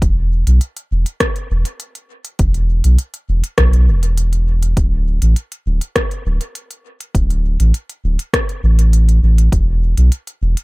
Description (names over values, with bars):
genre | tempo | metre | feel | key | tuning
ambient dub | 101 BPM | 4/4 | straight | unclear | A4 = 440 Hz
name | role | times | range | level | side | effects
soft dub sub bass | bass | 0.0-10.6 s | D1 to B1 | -12 LUFS | equal | tube saturation
electronic kick drum | drums | 0.0-9.6 s | none | -18 LUFS | equal | overdrive
organic electronic drum kit | drums | 0.0-10.6 s | hi-hat, rim click | -22 LUFS | left 1 dB | overdrive
room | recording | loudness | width
little or no reverb | none | -13 LUFS | side -25 dB against mid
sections
0.0-10.6 A section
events
none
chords
none